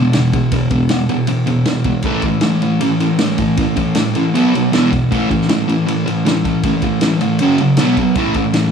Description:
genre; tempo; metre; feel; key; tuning
garage rock duo or trio; 157 BPM; 4/4; straight; unclear; A4 = 440 Hz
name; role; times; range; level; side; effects
fuzz guitar; riff; 0.0-8.7 s; E2 to B3; -14 LUFS; equal; distortion
vintage drum kit; drums; 0.1-8.6 s; kick drum, ride cymbal, snare drum; -21 LUFS; equal; none
room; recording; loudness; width
light reverb, studio ambience; small room ambience; -13 LUFS; side -6 dB against mid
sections
0.0-8.7 A section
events
none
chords
0.0 E5; 2.1 A5; 4.3 B5; 4.7 E5; 5.1 A5; 7.4 F#5; 7.8 B5; 8.2 A5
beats
0.14 | 0.52 0.91 1.29 1.67 | 2.05 2.44 2.82 3.20 | 3.58 3.97 4.35 4.73 | 5.11 5.49 5.87 6.26 | 6.64 7.02 7.40 7.78 | 8.16 8.54

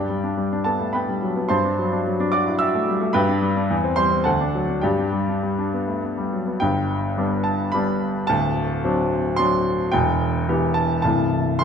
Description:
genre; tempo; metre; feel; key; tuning
classical, virtuoso piano study; 108 BPM; 3/4; rubato; G major; A4 = 439 Hz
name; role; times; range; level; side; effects
clear baby grand piano; solo; 0.0-11.6 s; C1 to E6; -19 LUFS; equal; none
room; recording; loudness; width
moderate recital hall reverb, RT60 1.7 s; dark, warm production; -19 LUFS; side -7 dB against mid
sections
0.0-6.6 A section; 6.6-11.6 A section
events
none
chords
0.0 G; 1.5 D7/G; 3.2 G; 3.7 C/E; 4.3 D; 4.9 G; 8.3 D7; 9.9 Em; 11.0 Am/C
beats
0.39 0.96 | 1.51 2.07 2.62 | 3.17 3.71 4.27 | 4.85 5.44 6.03 | 6.61 7.17 7.73 | 8.29 8.84 9.39 | 9.94 10.49 11.04 | 11.61

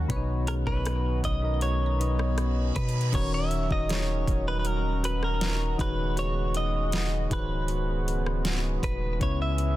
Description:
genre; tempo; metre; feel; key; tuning
contemporary R&B; 79 BPM; 4/4; straight; unclear; A4 = 438 Hz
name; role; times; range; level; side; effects
soft electric-piano-like synth keys; accompaniment; 0.0-9.8 s; B2 to D#5; -32 LUFS; left 2 dB; chorus
chorused pulse-width pad; sustained chords; 0.0-9.8 s; C#3 to G#4; -36 LUFS; right 1 dB; none
long sustained 808-style bass; bass; 0.0-9.8 s; C#1 to B2; -28 LUFS; equal; none
mallet-like synth pluck; texture; 0.0-8.5 s; F#4 to A#5; -46 LUFS; right 3 dB; none
smooth R&B drum kit; drums; 0.1-9.8 s; crash cymbal, hi-hat, kick drum, rim click, snare drum; -31 LUFS; equal; none
direct-recorded clean electric guitar; melody; 0.5-9.8 s; A#4 to E5; -33 LUFS; equal; ping-pong delay
reverse cymbal; sound effects; 2.4-3.1 s; none; -41 LUFS; right 7 dB; none
room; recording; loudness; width
digital ambience; dense, heavily limited modern master; -25 LUFS; side -15 dB against mid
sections
0.0-3.1 A section; 3.1-9.8 B section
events
reverse cymbal 2.4-3.1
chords
0.1 Bmaj9; 3.1 D#m7; 5.8 G#m7; 9.2 C#m7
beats
| 0.10 0.86 1.62 2.38 | 3.14 3.90 4.66 5.42 | 6.17 6.93 7.69 8.45 | 9.21

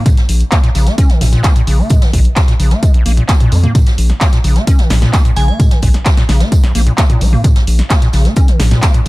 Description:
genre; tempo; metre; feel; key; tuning
acid house; 130 BPM; 4/4; straight; Bb minor pentatonic; A4 = 438 Hz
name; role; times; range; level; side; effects
acid bass, square; riff; 0.0-9.1 s; Bb1 to Db4; -18 LUFS; equal; overdrive, wide subtle chorus, sidechain pumping
electronic kick drum; drums; 0.1-8.9 s; none; -11 LUFS; equal; none
jazz brush drum kit; drums; 0.1-9.1 s; hi-hat, snare drum, tambourine; -28 LUFS; right 2 dB; sidechain pumping on hats, high-pass filter on hats, high-pass filter on snare, sidechain pumping on perc, high-pass filter on perc, high-pass filter on room
punchy analog drum machine; drums; 0.1-9.1 s; handclaps, hi-hat, snare drum, toms; -18 LUFS; equal; none
saturated sub bass; bass; 0.3-9.1 s; Bb1 to F2; -12 LUFS; equal; sidechain pumping
glassy synth bell; melody; 5.4-5.6 s; Ab5; -24 LUFS; equal; chorus, phaser, ping-pong delay
room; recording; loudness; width
small room ambience; dark, warm production; -9 LUFS; side -20 dB against mid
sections
0.0-9.1 A section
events
none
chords
0.0 Bb5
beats
| 0.06 0.52 0.98 1.44 | 1.90 2.37 2.83 3.29 | 3.75 4.21 4.67 5.13 | 5.60 6.06 6.52 6.98 | 7.44 7.90 8.37 8.83

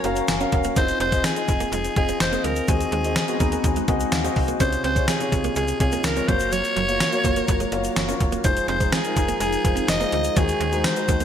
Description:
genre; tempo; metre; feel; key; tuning
1980s-style pop; 125 BPM; 4/4; straight; unclear; A4 = 439 Hz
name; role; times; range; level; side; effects
growling alto saxophone; melody; 0.0-11.2 s; Ab4 to Eb5; -25 LUFS; equal; digital delay
dark concert grand piano; accompaniment; 0.0-11.2 s; C3 to Bb5; -26 LUFS; left 3 dB; none
ensemble organ-string; sustained chords; 0.0-11.2 s; F3 to F5; -32 LUFS; equal; phaser, ensemble chorus
slap-like FM bass; bass; 0.0-11.2 s; Fb1 to Eb2; -29 LUFS; equal; none
clean 12-bit digital drum machine; drums; 0.0-11.2 s; hi-hat, kick drum, snare drum, tambourine; -24 LUFS; equal; gated reverb
direct-recorded clean electric guitar; riff; 0.1-11.2 s; Gb3 to Eb4; -32 LUFS; right 8 dB; wide subtle chorus, digital delay
tube shaker; percussion; 0.2-11.2 s; none; -39 LUFS; left 8 dB; none
room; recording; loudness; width
moderate plate reverb, RT60 2.4 s; bright 1980s-style digital production; -19 LUFS; side -9 dB against mid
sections
0.0-11.2 A section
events
grand piano fill 0.0-0.8, 3.2-4.6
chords
0.0 Gbmaj7; 0.8 Fm7; 2.7 Ab7/Eb; 4.6 Dbmaj7; 6.3 Gbmaj7; 8.4 Fm7; 10.4 Ab7/Eb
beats
0.28 | 0.77 1.25 1.73 2.21 | 2.69 3.17 3.65 4.12 | 4.61 5.08 5.57 6.04 | 6.53 7.00 7.49 7.96 | 8.45 8.93 9.40 9.88 | 10.37 10.85

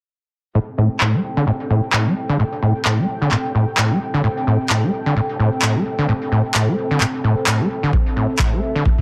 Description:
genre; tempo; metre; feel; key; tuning
acid house; 130 BPM; 4/4; swing 56% on 16ths; A minor; A4 = 439 Hz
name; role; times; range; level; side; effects
dark analog pad; sustained chords; 0.5-9.0 s; C4 to G5; -28 LUFS; equal; chorus, sidechain pumping
overdriven acid bass; riff; 0.5-8.9 s; A2 to A3; -20 LUFS; equal; distortion, subtle chorus, sidechain pumping, digital delay
electronic handclaps; drums; 1.0-8.5 s; none; -22 LUFS; equal; low-pass filter on snare
electronic kick drum; drums; 7.9-9.0 s; none; -20 LUFS; equal; none
room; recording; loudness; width
light reverb; dense, heavily limited modern master; -19 LUFS; mono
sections
0.5-9.0 A section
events
filter sweep on acid bass 0.5-9.0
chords
0.5 Am7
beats
| 0.55 1.01 1.47 1.93 | 2.39 2.86 3.32 3.78 | 4.24 4.70 5.16 5.62 | 6.09 6.55 7.01 7.47 | 7.93 8.39 8.86

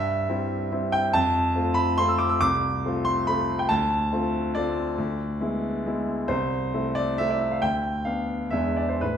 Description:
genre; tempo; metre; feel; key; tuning
classical, piano waltz; 120-148 BPM; 3/4; rubato; unclear; A4 = 440 Hz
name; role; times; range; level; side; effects
warm concert grand piano; solo; 0.0-9.2 s; C2 to E6; -22 LUFS; equal; none
room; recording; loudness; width
wet recital hall reverb, RT60 1.5 s; minimal, uncompressed stereo recording; -22 LUFS; side -8 dB against mid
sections
0.0-9.2 A section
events
none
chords
0.0 C; 1.1 F; 3.7 Dm7; 5.0 E7/D; 6.3 Am/C; 7.6 Bdim/D; 8.5 E7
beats
0.28 0.72 | 1.14 1.55 1.98 | 2.42 2.84 3.28 | 3.70 4.12 4.56 | 4.98 5.41 5.87 | 6.29 6.73 7.18 | 7.62 8.05 8.52 | 9.02

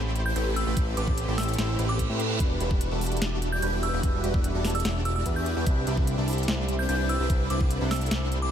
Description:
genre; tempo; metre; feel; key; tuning
future bass; 147 BPM; 4/4; half-time; E minor; A4 = 441 Hz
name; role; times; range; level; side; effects
airy breathy pad; sustained chords; 0.0-8.5 s; G3 to D6; -38 LUFS; equal; chorus, sidechain pumping
supersaw chords; riff; 0.0-8.5 s; G3 to D5; -30 LUFS; equal; ensemble chorus, sidechain pumping, tape echo
fat analog bass; bass; 0.0-8.5 s; E1 to A2; -28 LUFS; equal; tube saturation, sidechain pumping
trap drum kit; drums; 0.2-8.4 s; hi-hat, snare drum; -33 LUFS; left 1 dB; overdrive
glassy synth bell; melody; 0.3-8.5 s; D6 to G6; -34 LUFS; right 1 dB; chorus, sidechain pumping, tape echo
electronic kick drum; drums; 0.8-7.7 s; none; -26 LUFS; equal; none
reverse cymbal; sound effects; 1.8-2.4 s; none; -36 LUFS; right 5 dB; none
room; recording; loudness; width
light reverb; none; -24 LUFS; side -9 dB against mid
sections
0.0-8.5 A section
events
reverse cymbal 1.8-2.4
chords
0.0 Am9; 2.4 Em9; 5.7 Cmaj9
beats
0.36 | 0.77 1.18 1.58 1.99 | 2.40 2.81 3.22 3.62 | 4.03 4.44 4.85 5.26 | 5.67 6.07 6.48 6.89 | 7.30 7.71 8.11

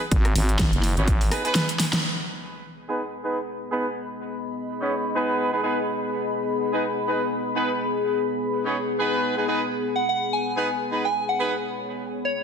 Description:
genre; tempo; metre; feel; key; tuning
bass house; 125 BPM; 4/4; swing 56% on 16ths; G# minor; A4 = 442 Hz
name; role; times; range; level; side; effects
warm horn section; stabs; 0.0-11.5 s; B3 to C#5; -27 LUFS; right 1 dB; sidechain pumping, low-pass filter, dub echo
growling FM bass; bass; 0.1-1.3 s; F#1 to G#1; -22 LUFS; equal; sidechain pumping
big-room dance drum kit; drums; 0.1-2.0 s; hi-hat, rim click, snare drum; -25 LUFS; equal; overdrive
electronic kick drum; drums; 0.1-1.2 s; none; -22 LUFS; equal; overdrive
deep dark ambient pad; texture; 3.3-12.4 s; B3 to B5; -27 LUFS; left 2 dB; chorus, built-in reverb, sidechain pumping
soft synth bell; melody; 10.0-12.4 s; C#5 to G#5; -25 LUFS; right 1 dB; chorus, phaser, dub echo
room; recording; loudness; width
wet lush hall reverb, RT60 1.8 s; dense, heavily limited modern master; -22 LUFS; side -7 dB against mid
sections
0.0-2.0 A section; 2.0-12.4 B section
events
drum fill 1.8; band accent 1.9; filter sweep on horn section 2.0-12.4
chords
0.0 G#m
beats
| 0.12 0.60 1.08 1.56 | 2.04 2.52 3.00 3.48 | 3.96 4.44 4.92 5.40 | 5.88 6.36 6.84 7.32 | 7.80 8.28 8.76 9.24 | 9.72 10.20 10.68 11.16 | 11.64 12.12

